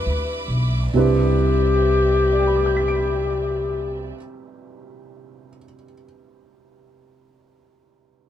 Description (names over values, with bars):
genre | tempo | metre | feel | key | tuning
jazz | 45 BPM | 4/4 | swing 69% on 8ths | C major | A4 = 442 Hz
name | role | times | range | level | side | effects
breathy clarinet | melody | 0.0-4.1 s | G4 to B4 | -20 LUFS | left 4 dB | none
dark upright piano | accompaniment | 0.0-8.3 s | C3 to D7 | -27 LUFS | right 7 dB | none
dark studio string section | sustained chords | 0.0-4.1 s | C4 to D6 | -32 LUFS | right 3 dB | none
upright bass | bass | 0.0-4.1 s | B1 to D2 | -21 LUFS | equal | none
room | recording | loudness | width
little or no reverb | close, detailed microphones | -17 LUFS | side -10 dB against mid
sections
0.9-6.3 A section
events
none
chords
0.0 Cmaj9